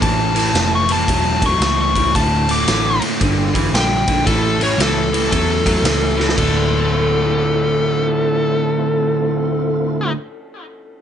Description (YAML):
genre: blues rock power trio and southern rock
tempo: 113 BPM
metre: 4/4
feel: swing 64% on 8ths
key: D minor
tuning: A4 = 440 Hz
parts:
  - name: smooth overdriven lead guitar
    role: melody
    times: 0.0-10.1 s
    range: A4 to D6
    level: -19 LUFS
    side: left 2 dB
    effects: none
  - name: tonewheel organ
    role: sustained chords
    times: 0.0-10.1 s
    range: A3 to Bb4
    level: -30 LUFS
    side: right 4 dB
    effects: none
  - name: crunchy overdriven guitar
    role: riff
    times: 0.0-10.2 s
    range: D2 to F#3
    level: -19 LUFS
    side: right 1 dB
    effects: none
  - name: vintage muted picked electric bass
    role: bass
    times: 0.0-10.1 s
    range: D1 to E2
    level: -22 LUFS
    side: right 1 dB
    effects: none
  - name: raw garage drum kit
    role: drums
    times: 0.0-6.5 s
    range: crash cymbal, kick drum, ride cymbal, snare drum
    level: -21 LUFS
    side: equal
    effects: none
room: light reverb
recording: nothing above 10.3 kHz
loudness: -14 LUFS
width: side -9 dB against mid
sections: 0.0-6.4 A section; 6.4-10.6 B section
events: drum fill 6.1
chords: 0.0 A7; 2.1 Dm7; 3.2 Gm7; 4.3 A7; 6.4 Dm7